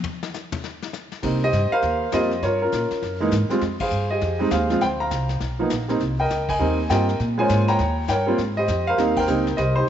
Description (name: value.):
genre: jazz piano trio.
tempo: 201 BPM.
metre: 4/4.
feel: swing 62% on 8ths.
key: unclear.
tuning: A4 = 442 Hz.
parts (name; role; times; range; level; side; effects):
vintage brush drum kit; drums; 0.0-9.9 s; brushed snare drum, crash cymbal, hi-hat, kick drum, snare drum, toms; -32 LUFS; left 6 dB; none.
warm concert grand piano; melody; 1.2-9.9 s; Fb3 to Bb5; -21 LUFS; right 1 dB; none.
upright bass; bass; 1.2-9.9 s; A#1 to Bb2; -25 LUFS; equal; none.
room: moderate echo chamber reverb, RT60 1.9 s, small room ambience.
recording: 1960s-style stereo, nothing above 7.8 kHz.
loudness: -19 LUFS.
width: side -10 dB against mid.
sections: 0.0-1.2 A section; 1.2-9.9 B section.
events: grand piano solo 0.0-1.2; drum solo 0.0-1.2; band accent 3.8, 6.5, 9.1.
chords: 0.0 N.C.; 1.2 Eb69/C; 2.4 Gm7b5; 3.0 Gbadd9; 3.6 Fm9; 4.8 C9sus4; 5.4 G7#9b13 (rootless); 6.0 Cm7; 7.2 Bbm9; 7.8 Eb7; 8.4 Abmaj9.